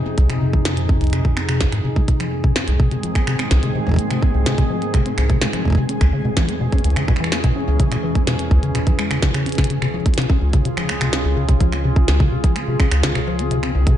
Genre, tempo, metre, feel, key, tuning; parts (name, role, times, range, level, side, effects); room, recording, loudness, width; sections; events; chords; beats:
IDM; 126 BPM; 4/4; straight; A4 = 441 Hz
warbly tape-like pad; sustained chords; 0.0-14.0 s; Db2 to Ab4; -23 LUFS; right 1 dB; chorus, built-in reverb, vintage 12-bit sampler grit, sidechain pumping
deep acid bass; arpeggios; 0.0-14.0 s; C2 to C#4; -20 LUFS; left 1 dB; wide subtle chorus, vintage 12-bit sampler grit, digital delay
electronic kick drum; drums; 0.2-14.0 s; -16 LUFS; equal
glitchy drum kit; drums; 0.2-14.0 s; finger snaps, hi-hat, snare drum; -25 LUFS; right 1 dB
flickering grainy texture; texture; 2.7-9.7 s; Ab3 to Ab5; -30 LUFS; right 2 dB; built-in reverb
moderate digital room reverb, RT60 1.1 s; dark, warm production, nothing above 10.8 kHz; -16 LUFS; side -11 dB against mid
0.0-9.7 A section; 9.7-14.0 B section
drum fill 9.5
0.0 Fm7; 5.9 E6; 9.7 Db
| 0.18 0.65 1.13 1.61 | 2.08 2.56 3.04 3.51 | 3.99 4.46 4.94 5.42 | 5.89 6.37 6.84 7.32 | 7.80 8.27 8.75 9.22 | 9.70 10.18 10.65 11.13 | 11.61 12.08 12.56 13.04 | 13.51